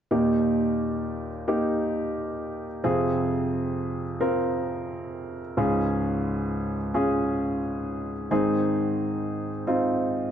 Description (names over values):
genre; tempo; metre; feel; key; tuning
pop; 88 BPM; 4/4; straight; unclear; A4 = 440 Hz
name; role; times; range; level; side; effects
warm upright piano; accompaniment; 0.1-10.3 s; Db2 to Bb4; -24 LUFS; equal; none
room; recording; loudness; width
moderate plate reverb, RT60 3.7 s; dark, warm production, nothing above 7.6 kHz; -24 LUFS; side -9 dB against mid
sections
0.1-10.3 A section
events
none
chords
0.1 Eb; 2.8 Fm; 5.6 Db; 8.3 Ab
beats
| 0.11 0.79 1.47 2.16 | 2.84 3.52 4.21 4.89 | 5.57 6.26 6.94 7.62 | 8.30 8.99 9.67